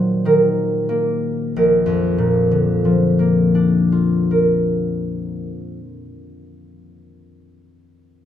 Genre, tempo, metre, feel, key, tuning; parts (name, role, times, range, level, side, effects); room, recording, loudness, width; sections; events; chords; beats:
classical, solo harp piece; 47 BPM; 3/4; rubato; Bb major; A4 = 440 Hz
concert harp; solo; 0.0-6.8 s; Bb1 to Eb5; -15 LUFS; left 1 dB
light reverb; minimal, uncompressed stereo recording; -15 LUFS; side -10 dB against mid
0.0-1.5 A section; 1.5-5.4 B section
slowing down 0.0-1.5
0.0 Ebm/Bb; 1.5 Bb
0.23 | 1.54 2.81 4.10